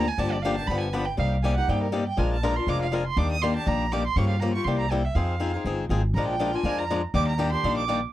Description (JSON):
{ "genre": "acoustic string swing (jazz manouche)", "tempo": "242 BPM", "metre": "4/4", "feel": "swing 56% on 8ths", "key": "unclear", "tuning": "A4 = 440 Hz", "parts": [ { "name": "rich violin", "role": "second line", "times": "0.0-7.9 s", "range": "Bb4 to Eb6", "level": "-30 LUFS", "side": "right 6 dB", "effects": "none" }, { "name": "picked swing-style acoustic guitar", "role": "accompaniment", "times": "0.0-8.0 s", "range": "C3 to Bb4", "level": "-27 LUFS", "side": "left 4 dB", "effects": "none" }, { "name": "upright bass", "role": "bass", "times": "0.0-8.0 s", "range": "F1 to G2", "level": "-26 LUFS", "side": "equal", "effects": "none" } ], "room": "little or no reverb", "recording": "dry, close 1970s-style studio recording", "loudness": "-23 LUFS", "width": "side -14 dB against mid", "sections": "0.0-1.2 A section; 1.2-8.1 A section", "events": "violin solo 0.0-8.1", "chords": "0.0 Gm7; 0.7 G7; 1.2 Cm7; 2.2 Bb7; 3.2 Ebmaj7; 4.2 Gm7b5; 4.7 C7; 5.2 Fm7; 6.2 Bb7; 7.2 Ebmaj7" }